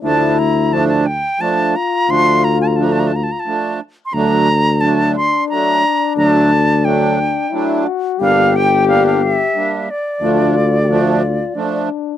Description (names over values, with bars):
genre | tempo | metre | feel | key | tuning
klezmer | 88 BPM | 3/4 | straight | D minor | A4 = 442 Hz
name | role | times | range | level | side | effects
bright concert flute | melody | 0.0-11.9 s | D5 to C6 | -17 LUFS | right 1 dB | none
breathy trombone | second line | 0.0-12.2 s | D4 to G4 | -18 LUFS | left 10 dB | none
accordion | accompaniment | 0.0-11.9 s | F3 to D4 | -18 LUFS | right 6 dB | light tremolo tuning
breathy tuba | bass | 0.0-11.4 s | G1 to D2 | -17 LUFS | equal | none
room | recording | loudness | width
light reverb | dry, close 1970s-style studio recording | -13 LUFS | side -11 dB against mid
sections
0.0-12.2 A section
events
speeding up 0.0-12.2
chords
0.0 Dm; 4.1 D; 8.2 Gm; 10.2 Dm